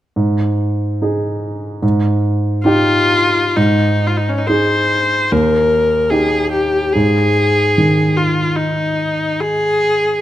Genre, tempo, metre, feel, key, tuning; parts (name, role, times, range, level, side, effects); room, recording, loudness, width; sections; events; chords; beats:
classical, romantic duo for viola and grand piano; 63-76 BPM; 4/4; rubato; Ab major; A4 = 439 Hz
warm baby grand piano; accompaniment; 0.2-10.2 s; Eb2 to Ab4; -16 LUFS; right 1 dB
rich viola; melody; 2.6-10.2 s; Db4 to C5; -15 LUFS; left 2 dB
moderate recital hall reverb, RT60 1.5 s; close, detailed microphones; -13 LUFS; side -13 dB against mid
0.2-3.6 A section; 3.6-10.2 B section
0.2 Ab5; 1.8 Eb/Ab; 3.6 Ab; 5.3 Eb; 6.9 Ab5
| 0.16 1.01 1.82 2.65 | 3.57 4.48 5.32 6.12 | 6.95 7.77 8.57 9.42